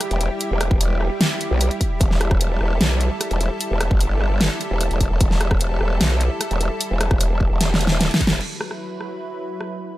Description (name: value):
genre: heavy wobble dubstep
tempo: 150 BPM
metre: 4/4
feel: half-time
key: E minor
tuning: A4 = 440 Hz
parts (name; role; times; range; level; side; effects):
- lush unison pad; sustained chords; 0.0-10.0 s; F#3 to B4; -27 LUFS; equal; chorus, sidechain pumping
- big-room dance drum kit; drums; 0.0-9.7 s; crash cymbal, hi-hat, rim click, snare drum; -22 LUFS; equal; none
- growl bass; bass; 0.1-8.4 s; E1 to B1; -20 LUFS; equal; chorus, overdrive
- electronic kick drum; drums; 0.7-8.3 s; none; -20 LUFS; equal; none
room: little or no reverb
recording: none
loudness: -18 LUFS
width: side -16 dB against mid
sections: 0.0-8.4 A section; 8.4-10.0 B section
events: drop 0.0-8.4; drum fill 7.6-8.4; filter sweep on analog synth pad 8.4-10.0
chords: 0.0 Em; 8.4 Esus2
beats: 0.01 | 0.41 0.81 1.21 1.61 | 2.01 2.41 2.81 3.21 | 3.61 4.01 4.41 4.81 | 5.21 5.61 6.01 6.41 | 6.81 7.21 7.61 8.01 | 8.41 8.81 9.21 9.61